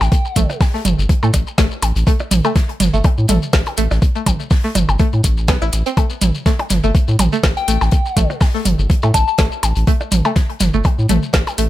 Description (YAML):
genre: minimal techno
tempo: 123 BPM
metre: 4/4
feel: swing 55% on 16ths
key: unclear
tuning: A4 = 440 Hz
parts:
  - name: soft synth bell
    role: melody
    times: 0.0-0.4, 7.6-9.3 s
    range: G5 to A5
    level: -24 LUFS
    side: left 3 dB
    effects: chorus, phaser, tape echo
  - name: saturated sub bass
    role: bass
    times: 0.0-11.7 s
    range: G1 to A2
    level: -17 LUFS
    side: equal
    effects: sidechain pumping
  - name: natural country drum kit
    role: drums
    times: 0.0-11.7 s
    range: hi-hat, snare drum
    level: -32 LUFS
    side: left 3 dB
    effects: sidechain pumping on hats, high-pass filter on hats, high-pass filter on snare, high-pass filter on room
  - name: electronic percussion blips and toms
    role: percussion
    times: 0.0-11.6 s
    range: none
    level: -20 LUFS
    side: right 2 dB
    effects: tape echo
  - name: shekere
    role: percussion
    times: 0.0-11.7 s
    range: none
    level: -27 LUFS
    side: left 6 dB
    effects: none
  - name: electronic kick drum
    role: drums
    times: 0.1-11.4 s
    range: none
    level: -15 LUFS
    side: equal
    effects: overdrive
  - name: string-like resonator pluck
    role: riff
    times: 0.4-11.6 s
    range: A3 to E4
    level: -23 LUFS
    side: equal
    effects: chorus, phaser, sidechain pumping, ping-pong delay
  - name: garage drum kit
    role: drums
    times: 0.4-11.7 s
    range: hi-hat, snare drum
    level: -21 LUFS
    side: right 1 dB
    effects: overdrive
room: small room ambience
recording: none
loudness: -13 LUFS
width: side -14 dB against mid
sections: 0.0-11.7 A section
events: none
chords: 0.0 A5